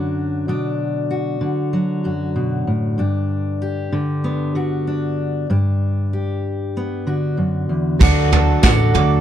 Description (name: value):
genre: indie folk with a building arrangement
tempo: 96 BPM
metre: 4/4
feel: straight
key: unclear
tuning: A4 = 440 Hz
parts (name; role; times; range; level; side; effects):
- fingerpicked steel-string acoustic guitar; accompaniment; 0.0-8.0 s; E2 to G4; -19 LUFS; left 1 dB; none
- picked steel-string acoustic guitar; accompaniment; 8.0-9.2 s; D3 to A4; -21 LUFS; left 6 dB; none
- warm grand piano; accompaniment; 8.0-9.2 s; F#3 to D5; -24 LUFS; right 15 dB; none
- bowl-back mandolin; arpeggios; 8.0-9.2 s; F#5 to D6; -21 LUFS; right 12 dB; none
- upright bass; bass; 8.0-9.2 s; A1 to D2; -16 LUFS; right 1 dB; none
- soft brush drum kit; drums; 8.0-9.1 s; crash cymbal, kick drum, snare drum, toms; -16 LUFS; right 1 dB; none
- tambourine; percussion; 8.6-8.8 s; none; -33 LUFS; left 21 dB; none
room: little or no reverb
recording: none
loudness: -17 LUFS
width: side -10 dB against mid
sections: 0.0-8.0 A section; 8.0-9.2 B section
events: none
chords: 0.0 Bm; 3.0 G; 8.0 D